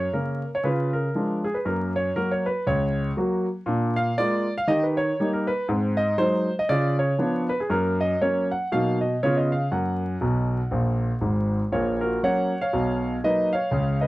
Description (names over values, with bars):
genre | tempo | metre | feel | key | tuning
jazz, stride piano | 119 BPM | 4/4 | swing 58% on 8ths | F# major | A4 = 440 Hz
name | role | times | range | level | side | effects
clear grand piano | solo | 0.0-14.1 s | G#1 to F#5 | -22 LUFS | equal | none
room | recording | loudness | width
moderate booth ambience, RT60 0.2 s | dry, close 1970s-style studio recording, vinyl crackle | -22 LUFS | side -18 dB against mid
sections
0.0-11.7 A section; 11.7-14.1 B section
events
grand piano fill 10.2-11.7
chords
0.0 F# (rootless); 0.7 C#; 1.7 F#; 3.7 A#7; 4.7 D#; 5.7 G#7; 6.7 C#7b9; 7.7 F#; 8.7 Bmaj7; 9.2 C#7; 9.7 F#; 11.7 F#/A#; 12.7 Bmaj7